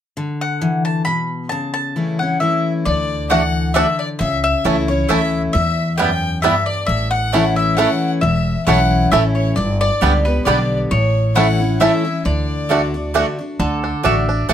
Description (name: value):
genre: bluegrass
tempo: 134 BPM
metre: 3/4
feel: swing 55% on 8ths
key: D major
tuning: A4 = 441 Hz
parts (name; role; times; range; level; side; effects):
- picked steel-string acoustic guitar; accompaniment; 0.2-14.5 s; E2 to G4; -20 LUFS; left 2 dB; none
- mandolin; melody; 0.4-14.5 s; A4 to B5; -21 LUFS; left 2 dB; none
- clear fiddle; second line; 2.9-13.1 s; B4 to G5; -27 LUFS; left 2 dB; none
- upright bass; bass; 2.9-14.5 s; E1 to E2; -20 LUFS; equal; none
- bluegrass banjo; arpeggios; 3.3-14.5 s; D3 to E4; -19 LUFS; right 2 dB; none
- mandolin; stabs; 3.3-14.5 s; A3 to A5; -20 LUFS; right 7 dB; none
room: light reverb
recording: none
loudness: -15 LUFS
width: side -10 dB against mid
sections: 0.2-2.9 A section; 2.9-13.6 B section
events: none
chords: 0.2 D; 1.5 A/C#; 2.9 D; 4.2 A/C#; 5.5 Em; 6.9 A; 9.6 G; 10.9 A; 12.3 D